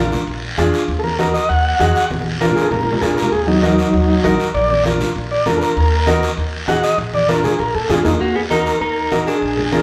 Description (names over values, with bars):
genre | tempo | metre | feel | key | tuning
latin, cumbia | 197 BPM | 4/4 | straight | Eb harmonic minor | A4 = 440 Hz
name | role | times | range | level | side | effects
overdriven combo organ | melody | 0.0-9.8 s | Gb3 to Gb5 | -20 LUFS | equal | none
clear upright piano | accompaniment | 0.0-9.8 s | D4 to Bb4 | -23 LUFS | equal | none
upright bass | bass | 0.0-9.8 s | Bb1 to Bb2 | -24 LUFS | equal | none
congas | percussion | 0.1-9.8 s | none | -26 LUFS | equal | none
guiro | percussion | 0.1-9.8 s | none | -30 LUFS | equal | none
electric guitar at the edge of break-up | second line | 8.2-9.8 s | Bb3 to Eb4 | -24 LUFS | equal | none
room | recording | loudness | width
wet large studio reverb, RT60 1.4 s | band playing live in one room | -17 LUFS | mono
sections
0.0-8.2 A section; 8.2-9.8 B section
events
transistor combo organ solo 0.0-8.2; drum fill 2.1-3.3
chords
0.0 Bb7; 0.9 Ebm; 2.1 Bb; 3.3 Ebm; 4.5 Bb; 5.8 Ebm; 7.0 Bb7; 8.2 Ebm